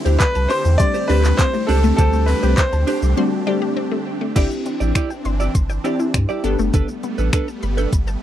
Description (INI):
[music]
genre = dance-pop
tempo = 101 BPM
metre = 4/4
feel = straight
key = unclear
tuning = A4 = 440 Hz
[part]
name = glassy wavetable pluck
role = accompaniment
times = 0.0-7.4 s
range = G3 to A4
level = -24 LUFS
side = left 2 dB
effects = chorus, sidechain pumping
[part]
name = supersaw chords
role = sustained chords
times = 0.0-8.2 s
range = D3 to G4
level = -27 LUFS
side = right 1 dB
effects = phaser, sidechain pumping
[part]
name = wide unison pluck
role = arpeggios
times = 0.1-8.2 s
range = D3 to G6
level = -27 LUFS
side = left 7 dB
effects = phaser, sidechain pumping, tape echo
[part]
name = direct-recorded clean electric guitar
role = riff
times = 0.1-8.1 s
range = D4 to D5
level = -24 LUFS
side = right 6 dB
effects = lush chorus
[part]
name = saturated sub bass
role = bass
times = 0.1-8.2 s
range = F#1 to G2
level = -18 LUFS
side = equal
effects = sidechain pumping
[part]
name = smooth R&B drum kit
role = drums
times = 0.1-8.2 s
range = crash cymbal, finger snaps, handclaps, hi-hat, kick drum, shaker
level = -19 LUFS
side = equal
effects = none
[part]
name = clear concert grand piano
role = melody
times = 0.2-3.1 s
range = A4 to D5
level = -21 LUFS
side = equal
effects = tape echo
[part]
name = group handclap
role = percussion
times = 0.2-2.7 s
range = none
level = -34 LUFS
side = right 12 dB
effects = none
[sound]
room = little or no reverb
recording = dry, close 1970s-style studio recording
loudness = -16 LUFS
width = side -11 dB against mid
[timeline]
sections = 0.0-4.4 A section; 4.4-8.2 B section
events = break 3.2-4.4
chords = 0.0 D7sus4; 4.4 Cadd9/G; 6.4 Gadd9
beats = 0.20 0.80 1.39 | 1.99 2.58 3.17 3.77 | 4.36 4.96 5.55 6.14 | 6.74 7.33 7.93